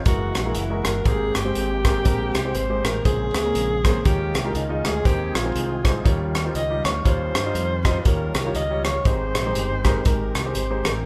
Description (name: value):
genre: uptempo gospel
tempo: 120 BPM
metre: 4/4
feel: swing 59% on 8ths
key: Ab major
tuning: A4 = 441 Hz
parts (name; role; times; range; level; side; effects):
- bright tonewheel organ; sustained chords; 0.0-11.0 s; Db3 to Ab4; -34 LUFS; equal; chorus vibrato, slow rotary speaker
- breathy alto saxophone; melody; 0.1-11.1 s; Eb4 to Eb5; -29 LUFS; equal; none
- warm concert grand piano; accompaniment; 0.1-11.0 s; Ab2 to Eb5; -31 LUFS; equal; none
- modern bright fingered electric bass; bass; 0.1-11.0 s; Gb1 to G2; -30 LUFS; equal; none
- tight funk drum kit; drums; 0.1-10.9 s; hi-hat, kick drum, rim click; -25 LUFS; equal; none
room: light reverb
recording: band playing live in one room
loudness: -22 LUFS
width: mono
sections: 0.0-11.1 A section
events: none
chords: 0.1 Gb9; 1.1 Abmaj9; 3.1 Bbm9; 4.1 Eb9sus4; 5.1 Ab; 6.1 Eb9; 9.1 Abmaj7